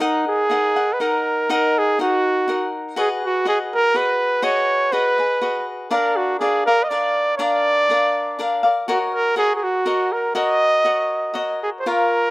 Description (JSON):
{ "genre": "mexican folk, mariachi", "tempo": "122 BPM", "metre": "3/4", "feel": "straight", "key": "Eb minor", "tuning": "A4 = 440 Hz", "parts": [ { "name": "clear trumpet", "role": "melody", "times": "0.0-12.3 s", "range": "Eb4 to Eb5", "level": "-18 LUFS", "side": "right 1 dB", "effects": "slapback echo" }, { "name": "cavaquinho", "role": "accompaniment", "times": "0.0-12.3 s", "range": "D4 to Gb5", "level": "-22 LUFS", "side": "left 2 dB", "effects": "none" } ], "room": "little or no reverb", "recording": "recorded outdoors, with no room sound", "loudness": "-17 LUFS", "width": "side -19 dB against mid", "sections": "0.0-11.9 A section", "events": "none", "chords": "0.0 Ebm; 3.0 Abm7; 5.9 Bb; 8.9 Ebm7", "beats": "| 0.01 0.51 1.00 | 1.50 1.99 2.48 | 2.97 3.46 3.94 | 4.43 4.92 5.41 | 5.91 6.41 6.90 | 7.39 7.88 8.38 | 8.87 9.35 9.85 | 10.34 10.84 11.35 | 11.86" }